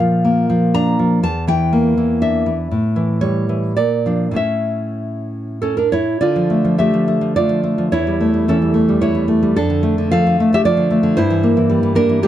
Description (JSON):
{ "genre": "romantic piece for solo classical guitar", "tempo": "93-127 BPM", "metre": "3/4", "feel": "rubato", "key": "D minor", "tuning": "A4 = 439 Hz", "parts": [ { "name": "nylon-string guitar", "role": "solo", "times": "0.0-12.3 s", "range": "E2 to Bb5", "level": "-14 LUFS", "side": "equal", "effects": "none" } ], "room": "light reverb", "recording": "dark, warm production", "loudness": "-14 LUFS", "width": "side -12 dB against mid", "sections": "0.0-6.2 A section; 6.2-12.3 B section", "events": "none", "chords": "0.0 Bb; 1.2 Em7b5; 2.7 A7; 3.8 Bb; 4.4 A; 6.2 Dm; 7.9 A7/E; 9.6 Dm/F; 11.2 Edim/G", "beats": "0.25 0.75 | 1.23 1.72 2.21 | 2.72 3.23 3.78 | 4.38 5.01 5.62 | 6.22 6.80 7.37 | 7.93 8.48 9.02 | 9.55 10.11 10.64 | 11.17 11.70 12.24" }